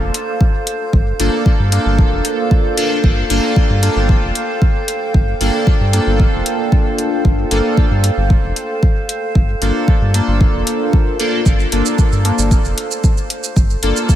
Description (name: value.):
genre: dub techno.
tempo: 114 BPM.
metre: 4/4.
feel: straight.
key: G minor.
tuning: A4 = 440 Hz.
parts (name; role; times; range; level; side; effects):
dark analog pad; sustained chords; 0.0-14.2 s; A4 to G5; -24 LUFS; right 2 dB; chorus, sidechain pumping.
round analog bass; bass; 0.0-13.9 s; F1 to G2; -17 LUFS; equal; sidechain pumping.
drifting glass-harmonics texture; texture; 0.0-14.2 s; C5; -29 LUFS; right 2 dB; chorus, built-in reverb, sidechain pumping.
electronic hi-hat and shaker; drums; 0.1-14.2 s; none; -22 LUFS; equal; none.
electronic kick drum; drums; 0.4-14.2 s; none; -13 LUFS; equal; none.
resonant sweep polysynth; stabs; 1.2-14.2 s; Bb3 to A4; -19 LUFS; left 1 dB; chorus, phaser, sidechain pumping, dub echo.
room: light reverb.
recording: none.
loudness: -13 LUFS.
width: side -12 dB against mid.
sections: 0.0-14.2 A section.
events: none.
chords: 0.0 Gm9.